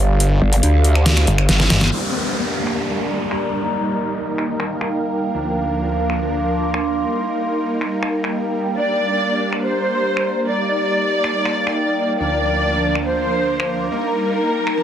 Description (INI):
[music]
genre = heavy wobble dubstep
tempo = 140 BPM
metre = 4/4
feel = half-time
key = G minor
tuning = A4 = 440 Hz
[part]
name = snarling distorted saw bass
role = bass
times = 0.0-1.9 s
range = G1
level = -16 LUFS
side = equal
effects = overdrive
[part]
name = warbly tape-like pad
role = texture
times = 0.0-14.8 s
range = D4 to D6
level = -24 LUFS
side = equal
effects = chorus, built-in reverb
[part]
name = dubstep drum kit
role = drums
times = 0.2-14.8 s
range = crash cymbal, finger snaps, hi-hat, snare drum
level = -21 LUFS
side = equal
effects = overdrive, low-pass filter on hats, low-pass filter on snare, low-pass filter on cymbals, low-pass filter on room
[part]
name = growl bass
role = bass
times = 0.4-1.7 s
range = G1 to D2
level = -14 LUFS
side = equal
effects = chorus, overdrive
[part]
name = supersaw chords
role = sustained chords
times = 1.9-14.8 s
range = D2 to A5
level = -23 LUFS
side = right 1 dB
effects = low-pass filter
[part]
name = downlifter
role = sound effects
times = 1.9-5.3 s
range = none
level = -25 LUFS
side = left 1 dB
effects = none
[part]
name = dark studio violin section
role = melody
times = 8.8-14.8 s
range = Bb4 to D5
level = -19 LUFS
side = equal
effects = digital delay
[sound]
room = moderate plate reverb, RT60 0.9 s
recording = dense, heavily limited modern master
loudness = -17 LUFS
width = side -9 dB against mid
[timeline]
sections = 0.0-1.9 A section; 1.9-14.8 B section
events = drop 0.0-1.9; drum fill 1.5-1.9; band accent 1.8; filter sweep on supersaw synth 1.9-14.8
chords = 0.0 G5; 1.9 Gm; 3.6 Eb; 5.3 Bb/D; 7.1 Eb; 8.8 Gm; 10.5 Eb; 12.2 Bb/D; 13.9 Eb